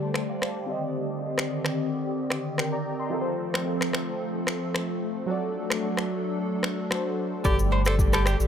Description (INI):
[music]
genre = afrobeats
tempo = 111 BPM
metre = 4/4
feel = straight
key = unclear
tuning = A4 = 438 Hz
[part]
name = warm analog keys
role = accompaniment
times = 0.0-8.5 s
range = F3 to D6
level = -30 LUFS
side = left 1 dB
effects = chorus, low-pass filter, dub echo
[part]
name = hollow soft pad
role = sustained chords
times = 0.0-8.5 s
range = D3 to A4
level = -30 LUFS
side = equal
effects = ensemble chorus, low-pass filter
[part]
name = afro-pop drum kit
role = drums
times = 0.1-8.5 s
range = finger snaps, kick drum, rim click, shaker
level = -28 LUFS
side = equal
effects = none
[part]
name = sub bass with octave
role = bass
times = 7.4-8.5 s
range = G1 to A1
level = -24 LUFS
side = equal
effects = none
[part]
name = agogo bells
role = percussion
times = 7.4-8.3 s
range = none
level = -34 LUFS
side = left 7 dB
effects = dub echo
[part]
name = warm alto saxophone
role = melody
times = 7.5-8.4 s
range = G4 to A4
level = -31 LUFS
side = right 1 dB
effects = dub echo
[part]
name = direct-recorded clean electric guitar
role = riff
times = 7.5-8.4 s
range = G4 to D5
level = -33 LUFS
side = right 4 dB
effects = dub echo
[sound]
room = light reverb, digital ambience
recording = echo-heavy mix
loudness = -25 LUFS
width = side -8 dB against mid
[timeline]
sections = 0.0-7.4 A section; 7.4-8.5 B section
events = filter sweep 0.0-7.4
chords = 0.0 Gsus2; 0.7 Cmadd9; 3.1 F; 5.3 D/F#; 7.4 Gsus2